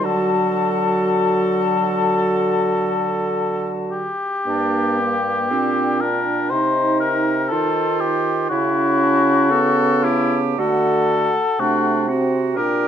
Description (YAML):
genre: classical, slow romantic movement for wind quintet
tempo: 52-62 BPM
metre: 4/4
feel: rubato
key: unclear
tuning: A4 = 445 Hz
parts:
  - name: mellow concert flute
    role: melody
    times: 0.0-12.9 s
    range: C5 to A5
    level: -28 LUFS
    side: left 9 dB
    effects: none
  - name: mellow oboe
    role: second line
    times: 0.0-12.9 s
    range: E4 to C5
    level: -20 LUFS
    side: left 4 dB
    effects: none
  - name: bright clarinet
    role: accompaniment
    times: 0.0-12.9 s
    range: Bb3 to A4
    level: -22 LUFS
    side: right 6 dB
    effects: none
  - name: mellow French horn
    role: accompaniment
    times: 0.0-12.9 s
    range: F#3 to Eb4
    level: -25 LUFS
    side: left 1 dB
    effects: none
  - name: mellow bassoon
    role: bass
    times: 0.0-12.9 s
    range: G2 to Eb3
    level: -24 LUFS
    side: right 2 dB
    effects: none
room: moderate large studio reverb, RT60 1.3 s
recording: none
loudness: -16 LUFS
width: side -9 dB against mid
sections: 0.0-4.5 A section; 4.5-12.9 B section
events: none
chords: 0.0 D; 4.5 Gm; 6.5 Cm; 8.5 A/C#; 10.6 D